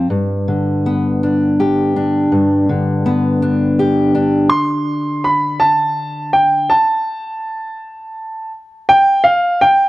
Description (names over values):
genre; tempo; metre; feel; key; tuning
folk; 55 BPM (dotted quarters); 6/8; straight; G mixolydian; A4 = 442 Hz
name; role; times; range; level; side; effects
fingerpicked steel-string acoustic guitar; accompaniment; 0.0-6.7 s; G2 to G4; -14 LUFS; left 1 dB; none
warm upright piano; melody; 4.5-9.9 s; F5 to C6; -13 LUFS; right 1 dB; none
room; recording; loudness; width
studio reverb; dry, close 1970s-style studio recording; -12 LUFS; side -17 dB against mid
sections
0.1-8.9 A section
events
build-up 0.1-8.9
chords
0.1 G; 4.5 N.C.